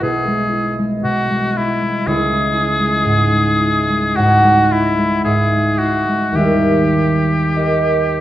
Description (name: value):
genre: classical, romantic duo for oboe and harp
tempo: 49-62 BPM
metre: 4/4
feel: rubato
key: unclear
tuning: A4 = 445 Hz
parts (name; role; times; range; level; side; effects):
- clear oboe; melody; 0.0-8.2 s; E4 to G#4; -18 LUFS; left 2 dB; none
- concert harp; accompaniment; 0.0-8.2 s; B1 to F#5; -15 LUFS; right 1 dB; none
room: wet recital hall reverb, RT60 1.5 s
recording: dark, warm production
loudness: -13 LUFS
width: side -13 dB against mid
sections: 0.0-8.2 A section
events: none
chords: 0.0 E/B; 2.1 C#m; 6.4 D#